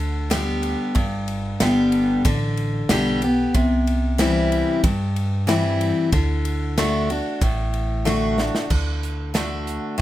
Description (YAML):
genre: honky-tonk and classic country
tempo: 93 BPM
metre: 4/4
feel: straight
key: D mixolydian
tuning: A4 = 441 Hz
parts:
  - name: picked steel-string acoustic guitar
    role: accompaniment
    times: 0.0-10.0 s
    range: G2 to G4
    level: -21 LUFS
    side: left 1 dB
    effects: none
  - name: upright bass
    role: bass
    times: 0.0-9.8 s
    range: G1 to G2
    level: -25 LUFS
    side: right 1 dB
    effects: none
  - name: natural country drum kit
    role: drums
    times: 0.3-9.8 s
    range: crash cymbal, hi-hat, kick drum, ride cymbal, snare drum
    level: -26 LUFS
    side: right 1 dB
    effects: none
room: light reverb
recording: none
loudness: -19 LUFS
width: side -14 dB against mid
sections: 0.0-8.7 A section; 8.7-10.0 B section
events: drum fill 8.1-8.7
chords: 0.0 G; 3.5 C; 6.1 D